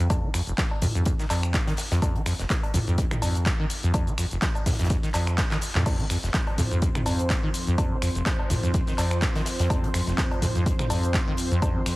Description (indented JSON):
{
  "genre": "acid house",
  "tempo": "125 BPM",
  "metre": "4/4",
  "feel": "swing 55% on 16ths",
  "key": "unclear",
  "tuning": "A4 = 439 Hz",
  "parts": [
    { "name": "acid bass, saw", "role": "riff", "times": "0.0-11.9 s", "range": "F1 to F3", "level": "-26 LUFS", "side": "equal", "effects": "tube saturation, lush chorus, cassette tape, sidechain pumping" },
    { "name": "punchy analog drum machine", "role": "drums", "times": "0.0-12.0 s", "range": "cowbell, crash cymbal, finger snaps, handclaps, hi-hat, shaker, toms", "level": "-29 LUFS", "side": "equal", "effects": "none" },
    { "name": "electronic kick drum", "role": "drums", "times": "0.1-11.7 s", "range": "none", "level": "-26 LUFS", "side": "equal", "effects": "none" },
    { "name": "modern studio drum kit", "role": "drums", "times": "0.1-12.0 s", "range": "hi-hat, snare drum", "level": "-41 LUFS", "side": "left 2 dB", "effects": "none" },
    { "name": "lush unison pad", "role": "sustained chords", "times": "6.3-12.0 s", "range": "F2 to C5", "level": "-31 LUFS", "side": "equal", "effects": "chorus, vintage 12-bit sampler grit, sidechain pumping" }
  ],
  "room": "light reverb",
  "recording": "heavily compressed radio sound",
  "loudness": "-22 LUFS",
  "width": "side -20 dB against mid",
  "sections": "0.0-12.0 A section",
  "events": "drum fill 5.5-5.9",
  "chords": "0.0 F5",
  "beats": "| 0.10 0.58 1.06 1.54 | 2.02 2.50 2.98 3.46 | 3.94 4.42 4.90 5.38 | 5.86 6.34 6.82 7.30 | 7.78 8.26 8.74 9.22 | 9.70 10.18 10.66 11.14 | 11.62"
}